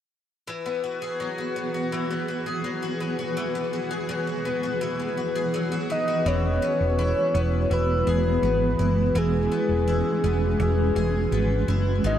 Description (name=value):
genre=dream pop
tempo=83 BPM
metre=4/4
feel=straight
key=E major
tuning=A4 = 443 Hz
part: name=granular cloud pad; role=sustained chords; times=1.1-12.2 s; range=D#3 to G#4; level=-28 LUFS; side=right 2 dB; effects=built-in reverb
part: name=picked twelve-string acoustic guitar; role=arpeggios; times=0.5-12.2 s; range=G#2 to G#4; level=-29 LUFS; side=left 3 dB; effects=lush chorus, tape echo
part: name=soft octave-layered synth lead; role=melody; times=5.9-12.2 s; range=G#4 to D#5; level=-25 LUFS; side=left 1 dB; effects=chorus, tape echo
part: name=hollow-body short-scale fingered electric bass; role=bass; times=6.3-12.2 s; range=E1 to G#1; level=-24 LUFS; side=equal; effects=none
room=wet huge ambient reverb, RT60 3.8 s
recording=dark, warm production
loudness=-22 LUFS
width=side -10 dB against mid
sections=0.5-6.3 A section; 6.3-12.2 B section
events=none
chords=0.5 Eadd9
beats=| 0.47 1.20 1.92 2.64 | 3.36 4.09 4.81 5.53 | 6.25 6.98 7.70 8.42 | 9.15 9.87 10.59 11.31 | 12.04